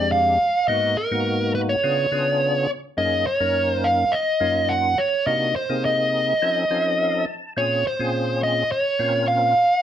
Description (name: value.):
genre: jazz.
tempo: 105 BPM.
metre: 4/4.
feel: straight.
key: unclear.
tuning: A4 = 442 Hz.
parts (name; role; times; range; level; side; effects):
dark smooth lead guitar; melody; 0.0-9.8 s; Bb4 to Gb5; -20 LUFS; right 1 dB; overdrive, slapback echo.
percussive tonewheel organ; accompaniment; 0.0-9.5 s; F2 to A5; -25 LUFS; left 1 dB; slow rotary speaker, chorus vibrato.
room: moderate club reverb, RT60 0.6 s.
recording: dark, warm production.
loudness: -19 LUFS.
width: side -10 dB against mid.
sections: 0.0-9.8 A section.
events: tonewheel organ fill 6.4-7.6.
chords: 0.0 Fm69; 0.7 Abm7; 1.8 Db7b9; 3.0 Gb6; 5.3 Cm7b5; 6.4 F7b13; 7.6 Bbm9.